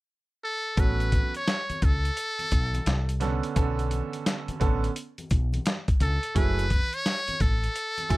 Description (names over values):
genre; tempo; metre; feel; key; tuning
hip hop, jazz-hop; 86 BPM; 4/4; swing 64% on 16ths; A major; A4 = 440 Hz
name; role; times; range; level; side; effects
trumpet with metal mute; melody; 0.4-8.2 s; A4 to C#5; -29 LUFS; equal; none
bright concert grand piano; accompaniment; 0.8-8.2 s; C#3 to G#5; -30 LUFS; right 6 dB; none
woody fretless electric bass; bass; 0.8-8.2 s; F#1 to C#2; -27 LUFS; equal; none
dusty soul sampler-style drum kit; drums; 0.8-8.2 s; hi-hat, kick drum, snare drum; -26 LUFS; equal; none
tube shaker and congas; percussion; 0.8-8.2 s; none; -42 LUFS; left 2 dB; none
room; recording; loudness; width
little or no reverb; none; -24 LUFS; side -19 dB against mid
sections
0.8-8.2 A section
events
none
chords
0.0 N.C.; 0.8 A69; 2.9 Csus2; 3.6 Bm9; 6.4 F#m9